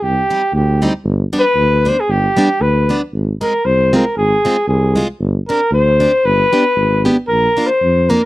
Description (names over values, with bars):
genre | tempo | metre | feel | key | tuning
alpine folk, alpine dance band | 115 BPM | 2/4 | swing 54% on 8ths | unclear | A4 = 440 Hz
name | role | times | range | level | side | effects
warm flugelhorn | melody | 0.0-8.3 s | G4 to C5 | -14 LUFS | left 1 dB | none
mellow tuba | bass | 0.0-8.2 s | G1 to F2 | -16 LUFS | equal | none
picked plugged-in steel-string acoustic guitar | accompaniment | 0.3-8.2 s | G3 to G4 | -17 LUFS | equal | none
room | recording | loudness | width
light reverb | dry, close 1970s-style studio recording | -12 LUFS | side -17 dB against mid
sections
0.0-8.3 A section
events
none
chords
0.0 Cm; 1.0 G; 3.1 Fm/Ab; 5.2 Gsus4; 6.2 G; 7.3 Bb